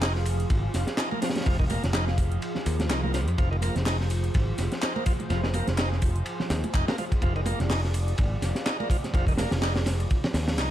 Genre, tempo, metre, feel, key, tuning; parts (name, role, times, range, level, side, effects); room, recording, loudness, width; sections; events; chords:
breakbeat, breaks; 125 BPM; 4/4; swing 57% on 16ths; F dorian; A4 = 440 Hz
lush unison pad; sustained chords; 0.0-10.7 s; F3 to F5; -34 LUFS; right 1 dB; chorus, phaser, sidechain pumping
bright tonewheel organ; riff; 0.0-10.7 s; Eb3 to Eb4; -34 LUFS; right 1 dB; overdrive, stopped rotary speaker, tube saturation, vintage 12-bit sampler grit, tape echo
modern bright picked electric bass; bass; 0.0-10.7 s; F1 to F2; -27 LUFS; equal
crunchy breakbeat drum kit; drums; 0.0-10.7 s; hi-hat, kick drum, ride cymbal, snare drum; -27 LUFS; equal
house drum kit; drums; 0.0-10.7 s; handclaps, hi-hat; -37 LUFS; equal
congas; percussion; 1.1-10.6 s; -36 LUFS; right 3 dB
studio reverb; -24 LUFS; side -12 dB against mid
0.0-10.7 A section
0.0 Fm